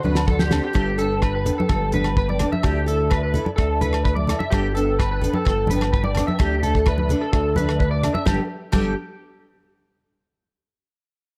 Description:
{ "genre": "highlife guitar band", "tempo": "128 BPM", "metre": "4/4", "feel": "straight", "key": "G major", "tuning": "A4 = 438 Hz", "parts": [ { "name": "clear trumpet", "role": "melody", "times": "0.0-0.5 s", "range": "F#4", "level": "-41 LUFS", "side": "equal", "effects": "none" }, { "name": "picked steel-string acoustic guitar", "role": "accompaniment", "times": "0.0-8.9 s", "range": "E3 to A4", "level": "-30 LUFS", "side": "equal", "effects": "none" }, { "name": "mellow tonewheel organ", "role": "sustained chords", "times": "0.0-8.5 s", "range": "A4 to C6", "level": "-36 LUFS", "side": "equal", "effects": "slow rotary speaker, chorus vibrato" }, { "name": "electric guitar at the edge of break-up", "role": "arpeggios", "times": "0.0-8.9 s", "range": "G4 to E5", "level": "-27 LUFS", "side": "equal", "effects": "ensemble chorus, slapback echo" }, { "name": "fat analog bass", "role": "bass", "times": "0.0-9.0 s", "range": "G1 to D2", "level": "-26 LUFS", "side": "equal", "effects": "none" }, { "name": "congas", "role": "percussion", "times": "0.1-8.9 s", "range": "none", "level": "-29 LUFS", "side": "equal", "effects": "none" }, { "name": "damped 70s drum kit", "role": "drums", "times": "0.2-8.8 s", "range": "crash cymbal, hi-hat, kick drum, rim click, snare drum", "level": "-24 LUFS", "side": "equal", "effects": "none" }, { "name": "agogo bells", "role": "percussion", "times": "0.2-8.8 s", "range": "none", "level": "-36 LUFS", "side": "equal", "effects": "none" } ], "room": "light reverb, small room ambience", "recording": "none", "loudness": "-21 LUFS", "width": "mono", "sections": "0.8-8.3 A section; 8.3-10.1 B section", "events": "none", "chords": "0.0 D7; 0.8 Gadd9; 2.6 Dsus2; 4.5 Gadd9; 6.4 Dsus2; 8.3 Gadd9" }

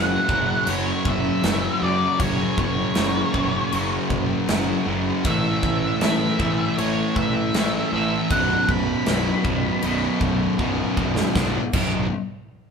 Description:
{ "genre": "quiet-loud alternative rock", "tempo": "79 BPM", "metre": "4/4", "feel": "straight", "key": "unclear", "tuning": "A4 = 439 Hz", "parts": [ { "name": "octave-fuzz lead guitar", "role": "melody", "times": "0.0-10.2 s", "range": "C#5 to B5", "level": "-25 LUFS", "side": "equal", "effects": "distortion" }, { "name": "biting overdriven guitar", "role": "riff", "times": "0.0-12.1 s", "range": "B1 to D4", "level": "-29 LUFS", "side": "right 1 dB", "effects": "none" }, { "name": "distorted electric guitar", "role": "riff", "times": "0.0-12.1 s", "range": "B1 to D4", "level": "-27 LUFS", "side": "right 6 dB", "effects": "distortion" }, { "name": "thick fuzz guitar", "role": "riff", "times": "0.0-12.1 s", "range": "B1 to A3", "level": "-26 LUFS", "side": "left 8 dB", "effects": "distortion" }, { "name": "fuzz picked electric bass", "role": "bass", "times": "0.0-12.1 s", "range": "B0 to F#2", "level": "-28 LUFS", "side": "right 1 dB", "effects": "overdrive" }, { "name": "big rock drum kit", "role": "drums", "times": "0.3-11.9 s", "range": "crash cymbal, kick drum, snare drum", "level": "-26 LUFS", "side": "equal", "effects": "none" } ], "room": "light reverb", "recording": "band playing live in one room", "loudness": "-19 LUFS", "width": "side -6 dB against mid", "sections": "0.0-11.4 A section; 11.4-12.7 B section", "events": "drum fill 10.6-11.4", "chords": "0.0 F#5; 5.3 A5; 8.3 B5; 11.4 Bm" }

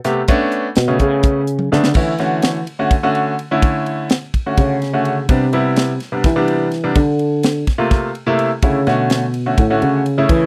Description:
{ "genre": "electric jazz fusion", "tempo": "252 BPM (eighths)", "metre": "7/8", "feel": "straight", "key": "unclear", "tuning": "A4 = 440 Hz", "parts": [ { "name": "clear concert grand piano", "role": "accompaniment", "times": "0.0-10.5 s", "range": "C3 to G4", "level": "-20 LUFS", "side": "equal", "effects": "none" }, { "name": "crisp fusion drum kit", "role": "drums", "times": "0.0-10.4 s", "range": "crash cymbal, hi-hat, kick drum, ride cymbal, snare drum, toms", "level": "-19 LUFS", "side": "equal", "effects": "none" }, { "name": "sustaining fretless electric bass", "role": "bass", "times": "0.8-10.5 s", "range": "A2 to E3", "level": "-19 LUFS", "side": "equal", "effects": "lush chorus" } ], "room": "little or no reverb", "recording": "dry, close 1970s-style studio recording", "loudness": "-16 LUFS", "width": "mono", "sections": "0.0-2.0 A section; 2.0-10.5 A section", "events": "fretless electric bass solo 0.0-10.5; drum fill 1.6-2.0", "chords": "0.3 Bm9; 2.0 Dmaj9; 5.3 Cmaj9; 7.0 C13; 8.6 Bm11" }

